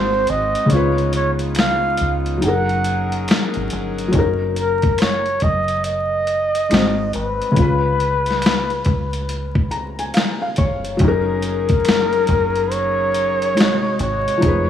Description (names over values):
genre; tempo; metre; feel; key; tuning
lo-fi hip hop; 70 BPM; 4/4; swing 64% on 16ths; F# major; A4 = 439 Hz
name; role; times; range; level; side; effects
breathy flugelhorn; melody; 0.0-14.7 s; A#4 to F#5; -20 LUFS; equal; tape echo
felt-muted upright piano; accompaniment; 0.0-14.7 s; C#3 to A#5; -22 LUFS; left 3 dB; cassette tape
pipe organ, foundations; sustained chords; 0.0-4.1, 11.0-14.7 s; B#2 to A#4; -26 LUFS; left 3 dB; none
deep dub fingered electric bass; bass; 0.0-14.7 s; F1 to C#2; -25 LUFS; equal; none
boom bap sampler-style drum kit; drums; 0.3-14.7 s; hi-hat, kick drum, snare drum; -20 LUFS; left 1 dB; none
finger snaps; percussion; 1.6-13.8 s; none; -35 LUFS; right 4 dB; none
room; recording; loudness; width
light reverb, studio reverb; vinyl crackle, small room ambience; -16 LUFS; side -10 dB against mid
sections
0.0-4.1 A section; 4.1-14.7 B section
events
kick muted 0.7-4.1; felt piano fill 9.3-11.0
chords
0.0 G#7; 0.7 C#7; 2.4 F#69; 4.1 F#6; 6.7 G#7; 7.6 C#7; 11.0 F#6; 13.6 G#7